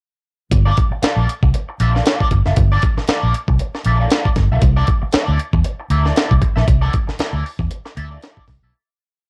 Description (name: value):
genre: funk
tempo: 117 BPM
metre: 4/4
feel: swing 56% on 16ths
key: G dorian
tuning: A4 = 440 Hz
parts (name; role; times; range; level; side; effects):
- electric guitar at the edge of break-up; accompaniment; 0.5-8.7 s; Bb3 to E5; -26 LUFS; equal; wah, cassette tape, plate reverb
- vintage muted fingered electric bass; bass; 0.5-8.7 s; F#1 to E2; -19 LUFS; equal; none
- breakbeat sampler-style drum kit; drums; 0.5-8.6 s; hi-hat, kick drum, snare drum; -19 LUFS; equal; cassette tape
room: light reverb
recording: home recording on cassette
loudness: -17 LUFS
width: mono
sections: 0.5-8.7 A section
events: fade-out 6.7-8.7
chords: 0.5 Gm9; 4.6 C13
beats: | 0.52 1.03 1.55 2.06 | 2.58 3.09 3.60 4.12 | 4.63 5.14 5.66 6.17 | 6.68 7.20 7.71 8.22